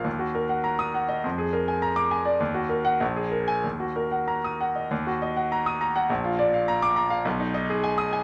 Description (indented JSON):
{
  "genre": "classical, virtuoso piano study",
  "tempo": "92-105 BPM",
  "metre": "2/4",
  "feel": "rubato",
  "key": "Eb minor",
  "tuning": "A4 = 442 Hz",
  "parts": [
    { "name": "clear concert grand piano", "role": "solo", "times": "0.0-8.2 s", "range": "Bb1 to Eb6", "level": "-26 LUFS", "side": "equal", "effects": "none" }
  ],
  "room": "moderate studio reverb, RT60 0.7 s",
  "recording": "none",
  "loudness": "-26 LUFS",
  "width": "mono",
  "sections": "0.0-4.9 A section; 4.9-8.2 A section",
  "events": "none",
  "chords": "0.1 Ebm; 1.2 Bb7/F; 2.4 Ebm; 3.0 Absus2/Bb; 3.6 Ebm; 6.1 Bb; 7.2 Abm/Cb"
}